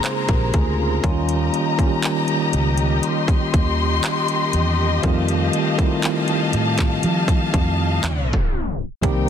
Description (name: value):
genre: contemporary R&B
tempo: 60 BPM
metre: 4/4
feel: straight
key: unclear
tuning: A4 = 440 Hz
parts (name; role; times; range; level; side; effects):
- mellow tine electric piano; accompaniment; 0.0-9.3 s; Eb3 to C5; -22 LUFS; right 1 dB; medium stereo tremolo
- warm studio string section; sustained chords; 0.0-9.3 s; Eb4 to C6; -24 LUFS; left 4 dB; none
- trap drum kit; drums; 0.0-9.3 s; handclaps, hi-hat, kick drum; -22 LUFS; equal; none
- vintage muted fingered electric bass; bass; 0.3-9.3 s; Bb1 to F3; -22 LUFS; equal; none
room: light reverb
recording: dense, heavily limited modern master, tape stop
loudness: -17 LUFS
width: side -8 dB against mid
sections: 0.0-9.0 A section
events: tape stop 8.0-9.0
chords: 0.0 Bbm9; 1.0 Eb7; 5.0 F9